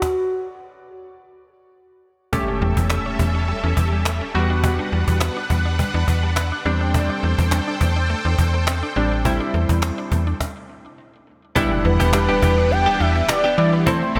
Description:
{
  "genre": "dance-pop",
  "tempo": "104 BPM",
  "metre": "4/4",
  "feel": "straight",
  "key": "E minor",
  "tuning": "A4 = 443 Hz",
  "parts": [
    { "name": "warm velvety synth lead", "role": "melody", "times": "0.0-0.9, 11.8-14.2 s", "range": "F#4 to G5", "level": "-23 LUFS", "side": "equal", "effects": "chorus" },
    { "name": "cajon", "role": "drums", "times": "0.0-14.2 s", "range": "none", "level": "-27 LUFS", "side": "equal", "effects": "none" },
    { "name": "chorused retro synth keys", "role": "accompaniment", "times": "2.3-14.2 s", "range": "G3 to G4", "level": "-27 LUFS", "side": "equal", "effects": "tremolo" },
    { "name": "supersaw chords", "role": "sustained chords", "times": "2.3-14.2 s", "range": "E3 to G5", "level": "-29 LUFS", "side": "equal", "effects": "ensemble chorus" },
    { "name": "mallet-like synth pluck", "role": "arpeggios", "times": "2.3-14.2 s", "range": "E3 to G4", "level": "-34 LUFS", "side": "equal", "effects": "chorus, phaser, digital delay" },
    { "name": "impact", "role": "sound effects", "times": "2.3-4.6, 11.6-13.9 s", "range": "none", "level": "-32 LUFS", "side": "equal", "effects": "none" },
    { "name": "slap-like FM bass", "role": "bass", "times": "2.6-14.2 s", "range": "A1 to E3", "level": "-22 LUFS", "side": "equal", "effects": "none" },
    { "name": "direct-recorded clean electric guitar", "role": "riff", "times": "11.6-14.2 s", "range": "B3 to A4", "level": "-28 LUFS", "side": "equal", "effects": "lush chorus" }
  ],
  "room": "moderate plate reverb, RT60 3.1 s",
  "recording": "bright 1980s-style digital production",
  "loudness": "-20 LUFS",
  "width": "mono",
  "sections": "0.0-2.3 A section; 2.3-11.6 B section; 11.6-14.2 C section",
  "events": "stop 0.0-2.3, 10.4-11.6; impact 2.3-4.6, 11.6-13.9",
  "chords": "0.0 N.C.; 2.3 A7/E; 4.3 Gmaj7/E; 6.7 D7sus4; 11.6 Em7"
}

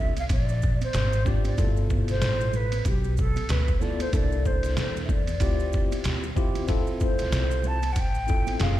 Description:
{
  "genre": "hip hop, jazz-hop",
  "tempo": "94 BPM",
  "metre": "4/4",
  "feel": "swing 59% on 16ths",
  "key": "D minor",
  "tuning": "A4 = 437 Hz",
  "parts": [
    { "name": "breathy mellow jazz flute", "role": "melody", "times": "0.0-8.8 s", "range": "G4 to A5", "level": "-31 LUFS", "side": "equal", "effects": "analog delay" },
    { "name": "mellow tine electric piano", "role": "accompaniment", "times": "0.0-8.8 s", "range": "B2 to A4", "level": "-31 LUFS", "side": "left 2 dB", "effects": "medium stereo tremolo" },
    { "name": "upright bass", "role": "bass", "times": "0.0-8.8 s", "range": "F#1 to E2", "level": "-27 LUFS", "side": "equal", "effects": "none" },
    { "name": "trip hop sampler-style drum kit", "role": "drums", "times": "0.2-8.8 s", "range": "hi-hat, kick drum, ride cymbal, snare drum", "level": "-26 LUFS", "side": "equal", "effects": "none" },
    { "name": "congas and maracas", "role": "percussion", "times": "0.2-8.8 s", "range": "none", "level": "-40 LUFS", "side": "right 14 dB", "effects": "none" }
  ],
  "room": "little or no reverb",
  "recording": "played on a big sound system in a bare room, stone room reverb",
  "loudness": "-22 LUFS",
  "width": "side -14 dB against mid",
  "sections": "0.0-6.7 A section; 6.7-8.8 B section",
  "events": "none",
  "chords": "0.0 Bbadd9; 1.6 G13; 4.1 C13; 5.4 Dm11; 6.7 Dm7"
}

